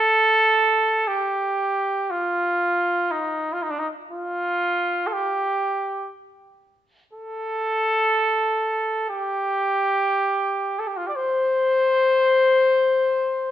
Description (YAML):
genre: caucasian folk, Caucasian lament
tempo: 55-61 BPM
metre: 4/4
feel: rubato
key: C dorian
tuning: A4 = 440 Hz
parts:
  - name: mellow trumpet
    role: solo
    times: 0.0-13.5 s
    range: D4 to D5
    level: -19 LUFS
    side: equal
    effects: none
room: wet recital hall reverb, RT60 1.4 s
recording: recorded in a church or concert hall, nothing above 8.0 kHz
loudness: -19 LUFS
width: side -11 dB against mid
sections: 0.0-13.5 A section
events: none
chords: none